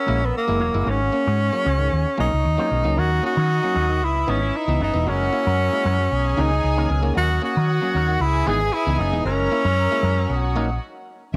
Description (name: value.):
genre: disco.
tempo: 115 BPM.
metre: 4/4.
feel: straight.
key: C# dorian.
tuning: A4 = 440 Hz.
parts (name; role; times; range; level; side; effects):
breathy tenor saxophone; melody; 0.0-10.8 s; A#3 to G#4; -25 LUFS; equal; none.
mellow small flute group; sustained chords; 0.0-11.4 s; G#4 to E6; -35 LUFS; equal; none.
clav; accompaniment; 0.1-11.4 s; G#2 to E4; -31 LUFS; equal; none.
electric guitar with an envelope filter; accompaniment; 0.1-10.7 s; E3 to C#5; -35 LUFS; equal; none.
hollow-body short-scale fingered electric bass; bass; 0.1-11.4 s; E1 to D#3; -24 LUFS; equal; none.
warm studio string section; second line; 3.0-11.4 s; D#4 to A#5; -32 LUFS; equal; none.
room: light reverb.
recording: none.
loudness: -21 LUFS.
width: mono.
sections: 0.0-3.0 A section; 3.0-11.3 B section.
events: stop 10.8-11.3.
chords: 0.0 F#7; 0.9 G#7sus4; 3.0 D#m7; 4.0 C#m9; 5.1 F#9; 6.1 Bmaj9; 7.2 D#m7; 8.2 C#m9; 9.3 F#9; 10.3 Bmaj9.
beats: 0.35 | 0.87 1.40 1.92 2.45 | 2.97 3.50 4.02 4.54 | 5.07 5.59 6.12 6.64 | 7.16 7.69 8.21 8.73 | 9.25 9.78 10.30 10.82 | 11.34.